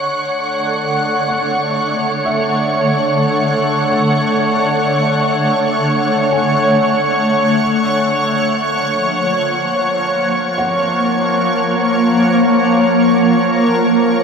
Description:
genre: ambient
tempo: free time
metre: none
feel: none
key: unclear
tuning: A4 = 440 Hz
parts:
  - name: shimmering ambient pad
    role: sustained chords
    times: 0.0-14.2 s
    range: D3 to F#5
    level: -13 LUFS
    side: equal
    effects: chorus, built-in reverb
  - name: felt-muted upright piano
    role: arpeggios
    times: 0.0-14.2 s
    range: E5 to G#5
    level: -30 LUFS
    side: right 1 dB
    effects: none
  - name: wind-like tuned noise texture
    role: texture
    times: 0.0-14.2 s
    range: C#6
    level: -21 LUFS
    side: right 1 dB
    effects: built-in reverb
room: wet lush hall reverb, RT60 3.0 s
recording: none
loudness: -13 LUFS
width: side -6 dB against mid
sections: 0.0-14.2 A section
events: none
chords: 0.0 Dmaj7; 7.6 F#maj7

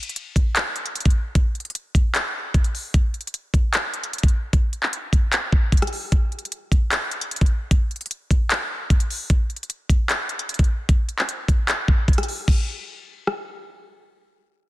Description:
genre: hip hop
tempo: 151 BPM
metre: 4/4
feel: half-time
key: none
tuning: none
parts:
  - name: trap drum kit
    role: drums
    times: 0.0-13.4 s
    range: crash cymbal, handclaps, hi-hat, kick drum, rim click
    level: -19 LUFS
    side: equal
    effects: vintage 12-bit sampler grit
room: little or no reverb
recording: dense, heavily limited modern master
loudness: -19 LUFS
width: side -17 dB against mid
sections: 0.0-12.5 A section; 12.5-14.7 B section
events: none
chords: none

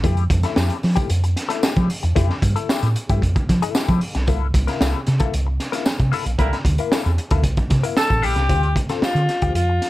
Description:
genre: funk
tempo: 114 BPM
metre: 4/4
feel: straight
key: unclear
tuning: A4 = 445 Hz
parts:
  - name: direct-recorded clean electric guitar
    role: accompaniment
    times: 0.0-9.7 s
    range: A3 to Bb4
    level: -26 LUFS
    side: left 9 dB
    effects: wah
  - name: hollow-body short-scale fingered electric bass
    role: bass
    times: 0.0-9.8 s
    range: A1 to F3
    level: -19 LUFS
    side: equal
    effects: none
  - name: crunchy breakbeat drum kit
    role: drums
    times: 0.0-9.9 s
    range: hi-hat, kick drum, snare drum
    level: -21 LUFS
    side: right 1 dB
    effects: none
  - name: tambourine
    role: percussion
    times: 0.6-9.2 s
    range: none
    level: -34 LUFS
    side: left 4 dB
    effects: none
  - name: warm horn section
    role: second line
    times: 6.4-6.6 s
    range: G3 to Bb4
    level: -25 LUFS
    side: right 3 dB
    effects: none
  - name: breathy alto saxophone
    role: melody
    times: 8.0-9.9 s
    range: F4 to A4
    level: -21 LUFS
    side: left 1 dB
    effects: none
room: little or no reverb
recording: none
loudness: -17 LUFS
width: side -16 dB against mid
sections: 0.0-8.5 A section; 8.5-9.9 B section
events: band accent 6.4-8.5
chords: 0.0 Fmaj9; 4.3 C13; 8.5 Dm7

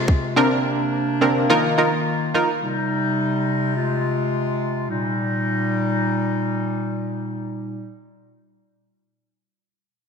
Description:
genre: dancehall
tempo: 106 BPM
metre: 4/4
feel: straight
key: Eb major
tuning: A4 = 440 Hz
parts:
  - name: warm woodwind section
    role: sustained chords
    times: 0.0-7.9 s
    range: Bb2 to F4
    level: -22 LUFS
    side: left 1 dB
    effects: stereo widening, sidechain pumping
  - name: punchy chord stab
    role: accompaniment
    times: 0.4-2.5 s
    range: C4 to Bb4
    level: -19 LUFS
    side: right 1 dB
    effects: chorus
room: wet lush hall reverb, RT60 1.9 s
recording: bright 1980s-style digital production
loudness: -19 LUFS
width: side -6 dB against mid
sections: 0.0-4.9 A section; 4.9-7.2 B section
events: none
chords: 0.4 Bbadd9; 1.5 Ebsus2; 2.6 Cm; 3.8 Ab6; 4.9 Eb

